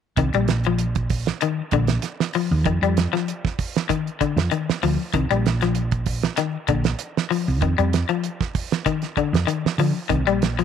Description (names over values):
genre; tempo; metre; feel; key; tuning
afrobeat; 97 BPM; 4/4; swing 54% on 16ths; C minor; A4 = 439 Hz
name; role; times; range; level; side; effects
electric guitar at the edge of break-up; arpeggios; 0.2-10.6 s; D3 to G3; -23 LUFS; left 10 dB; none
hollow-body short-scale fingered electric bass; bass; 0.2-10.6 s; Bb1 to D3; -22 LUFS; right 2 dB; none
damped 70s drum kit; drums; 0.2-10.6 s; hi-hat, kick drum, snare drum; -24 LUFS; right 7 dB; none
room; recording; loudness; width
light reverb, studio ambience; 1960s-style stereo with parts hard left and right; -20 LUFS; side -8 dB against mid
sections
0.2-10.6 A section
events
none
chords
0.2 Cm7 (rootless); 2.7 Dm; 5.1 N.C.; 7.6 Ebmaj7sus2/F; 10.1 Cm7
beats
| 0.17 0.79 1.41 2.03 | 2.65 3.27 3.89 4.51 | 5.13 5.75 6.37 6.99 | 7.61 8.23 8.85 9.47 | 10.09